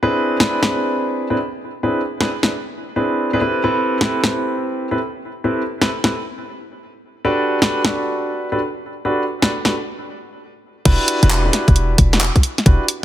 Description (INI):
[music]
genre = UK garage, two-step garage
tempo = 133 BPM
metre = 4/4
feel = swing 66% on 16ths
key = E minor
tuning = A4 = 440 Hz
[part]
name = warm concert grand piano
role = stabs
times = 0.0-12.8 s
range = C4 to B4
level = -19 LUFS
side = equal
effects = digital delay
[part]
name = garage drum kit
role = drums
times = 0.4-13.0 s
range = crash cymbal, handclaps, hi-hat, snare drum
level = -18 LUFS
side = equal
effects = overdrive, soft clipping on snare
[part]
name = short 808-style bass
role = bass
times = 10.9-12.8 s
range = E1 to B1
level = -15 LUFS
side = equal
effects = none
[part]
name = electronic kick drum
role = drums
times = 10.9-12.8 s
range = none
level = -14 LUFS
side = equal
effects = none
[sound]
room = light reverb, digital ambience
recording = dense, heavily limited modern master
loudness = -16 LUFS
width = side -12 dB against mid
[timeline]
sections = 0.0-10.9 A section; 10.9-13.0 B section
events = drop 10.9-13.0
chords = 0.0 E7b13; 3.4 Am9; 7.2 Gmaj9; 10.9 Em9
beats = | 0.03 0.48 0.93 1.38 | 1.83 2.28 2.73 3.19 | 3.64 4.09 4.54 4.99 | 5.44 5.89 6.34 6.79 | 7.25 7.70 8.15 8.60 | 9.05 9.50 9.95 10.40 | 10.86 11.31 11.76 12.21 | 12.66